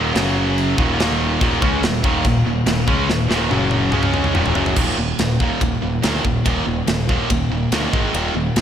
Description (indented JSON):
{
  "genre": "heavy metal",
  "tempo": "142 BPM",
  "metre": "4/4",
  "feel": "straight",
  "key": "Eb minor",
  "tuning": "A4 = 441 Hz",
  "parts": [
    { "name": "distorted electric guitar", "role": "riff", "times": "0.0-8.6 s", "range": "Eb2 to Db4", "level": "-23 LUFS", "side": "left 7 dB", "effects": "distortion, slapback echo" },
    { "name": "high-gain distorted guitar", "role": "riff", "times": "0.0-8.6 s", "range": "Eb2 to Db4", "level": "-22 LUFS", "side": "right 7 dB", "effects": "distortion, slapback echo" },
    { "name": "high-gain distorted guitar", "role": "riff", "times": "0.0-4.8 s", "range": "Eb2 to Db4", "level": "-25 LUFS", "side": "right 1 dB", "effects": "distortion" },
    { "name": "growling picked electric bass", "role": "bass", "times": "0.0-8.6 s", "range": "Eb1 to D2", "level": "-24 LUFS", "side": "equal", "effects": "overdrive" },
    { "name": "tight metal drum kit", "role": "drums", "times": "0.2-8.6 s", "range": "crash cymbal, kick drum, ride cymbal, snare drum, toms", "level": "-21 LUFS", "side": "equal", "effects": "none" }
  ],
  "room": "moderate lush hall reverb, RT60 1.9 s, small room ambience",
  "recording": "big arena sound",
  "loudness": "-16 LUFS",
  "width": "side -9 dB against mid",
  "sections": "0.0-4.8 A section; 4.8-8.6 B section",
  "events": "drum fill 3.1-4.8",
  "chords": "0.1 Gb5; 0.8 Eb5; 3.5 Gb5; 3.9 Db5; 4.3 Ebm; 4.8 Eb5; 7.9 Ab5",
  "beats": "0.14 0.56 0.98 | 1.40 1.82 2.24 2.67 | 3.09 3.51 3.93 4.35 | 4.77 5.19 5.61 6.04 | 6.46 6.88 7.30 7.72 | 8.14 8.56"
}